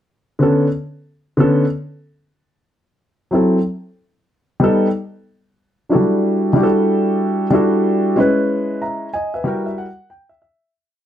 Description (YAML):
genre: hip hop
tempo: 93 BPM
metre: 4/4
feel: swing 62% on 16ths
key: unclear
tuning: A4 = 440 Hz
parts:
  - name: dark grand piano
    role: solo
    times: 0.4-10.7 s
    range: D3 to A#5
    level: -14 LUFS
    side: equal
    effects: none
room: moderate studio reverb, RT60 0.6 s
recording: none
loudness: -15 LUFS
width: side -10 dB against mid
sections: 0.4-10.7 A section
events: fade-out 8.2-10.7; grand piano fill 8.8-10.7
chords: 0.4 Bm9; 3.0 F#m7b5; 4.3 Baug7; 5.6 Em11; 8.2 C#m7; 9.5 F#7b9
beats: | 0.42 1.06 1.71 2.35 | 3.00 3.65 4.29 4.94 | 5.58 6.23 6.87 7.52 | 8.16 8.81 9.45 10.10